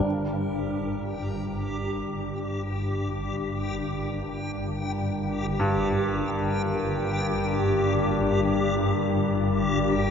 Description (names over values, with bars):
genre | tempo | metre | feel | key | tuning
dark ambient drone | free time | none | none | G minor | A4 = 441 Hz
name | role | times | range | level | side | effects
deep dark ambient pad | sustained chords | 0.0-10.1 s | G3 to D5 | -29 LUFS | left 1 dB | chorus, built-in reverb
swarming drone | drone | 0.0-10.1 s | G1 to G2 | -29 LUFS | equal | built-in reverb
backwards swelling texture | texture | 0.0-10.1 s | G4 | -30 LUFS | left 1 dB | built-in reverb
clear grand piano | arpeggios | 5.6-10.1 s | G2 | -30 LUFS | equal | tape echo
room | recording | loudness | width
wet cathedral reverb, RT60 6.6 s | nothing above 10.6 kHz | -24 LUFS | side -7 dB against mid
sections
0.1-10.1 A section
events
fade-in on synth drone 0.1-10.1; fade-in on ambient pad 0.1-10.1; fade-in on synth texture 0.1-10.1; fade-in on grand piano 0.1-10.1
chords
0.0 Gm